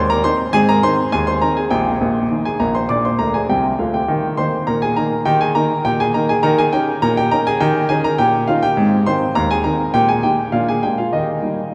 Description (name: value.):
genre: ragtime piano.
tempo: 102 BPM.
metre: 2/4.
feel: straight.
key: Eb major.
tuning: A4 = 438 Hz.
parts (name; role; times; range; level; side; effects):
warm grand piano; solo; 0.0-11.7 s; Bb1 to D6; -17 LUFS; equal; none.
room: wet cathedral reverb, RT60 6.0 s.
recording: in a vast, echoing space.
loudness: -17 LUFS.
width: mono.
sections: 0.0-11.7 A section.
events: grand piano fill 3.2-4.1.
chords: 0.0 Ab; 1.7 Eb/Bb; 2.9 Bb; 4.1 Eb; 6.4 Eb7; 8.8 Ab; 9.9 Eb/Bb; 10.5 Bb7; 11.1 Eb.